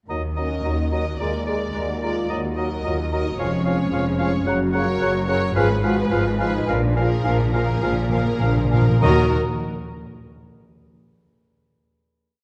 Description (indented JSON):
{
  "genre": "quick classical-period movement for symphony orchestra",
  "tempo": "98-112 BPM",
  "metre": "4/4",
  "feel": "rubato",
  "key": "Eb minor",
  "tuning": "A4 = 439 Hz",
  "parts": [
    { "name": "bright oboe", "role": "second line", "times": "0.1-9.3 s", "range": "D5 to Gb5", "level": "-33 LUFS", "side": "equal", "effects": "none" },
    { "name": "clear clarinet", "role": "second line", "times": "0.1-9.3 s", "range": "Bb4 to Db5", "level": "-35 LUFS", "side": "equal", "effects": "none" },
    { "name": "mellow hollow concert flute", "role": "second line", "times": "0.1-9.3 s", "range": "Ab5 to Bb5", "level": "-37 LUFS", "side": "equal", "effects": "none" },
    { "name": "mellow bassoon", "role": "accompaniment", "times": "0.1-9.3 s", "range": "Db3 to Ab3", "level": "-32 LUFS", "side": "equal", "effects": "none" },
    { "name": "mellow French horn section", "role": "sustained chords", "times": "0.1-9.3 s", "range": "Bb3 to Bb4", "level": "-30 LUFS", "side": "equal", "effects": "none" },
    { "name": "rich chamber double bass section", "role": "bass", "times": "0.1-9.3 s", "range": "F1 to Eb2", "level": "-28 LUFS", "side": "equal", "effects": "none" },
    { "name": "rich studio cello section", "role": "bass", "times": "0.1-9.4 s", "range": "Eb2 to Eb3", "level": "-30 LUFS", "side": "equal", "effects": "none" },
    { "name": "timpani", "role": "percussion", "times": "0.1-0.9, 6.7-9.3 s", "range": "Bb2 to Eb3", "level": "-26 LUFS", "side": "equal", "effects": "none" },
    { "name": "rich studio violin section", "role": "melody", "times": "0.4-9.4 s", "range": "Bb4 to Eb5", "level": "-32 LUFS", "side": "equal", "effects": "none" },
    { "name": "warm studio violin section", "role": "second line", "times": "0.4-9.3 s", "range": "Ab4 to Bb4", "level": "-38 LUFS", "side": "equal", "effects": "none" },
    { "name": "warm studio viola section", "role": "accompaniment", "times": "0.4-9.3 s", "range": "F3 to Gb4", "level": "-33 LUFS", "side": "equal", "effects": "none" }
  ],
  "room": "wet concert hall reverb, RT60 2.0 s",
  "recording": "dark, warm production",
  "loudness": "-21 LUFS",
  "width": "mono",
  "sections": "0.1-9.0 A section; 9.0-11.4 final chord",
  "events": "slowing down 3.4-9.0; timpani fill 6.7-9.0",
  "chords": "0.1 Ebm; 1.2 Bb7/Eb; 2.3 Ebm; 3.4 Db/F; 4.5 Gb; 5.6 Fdim/Ab; 6.7 Bb7; 9.0 Ebm"
}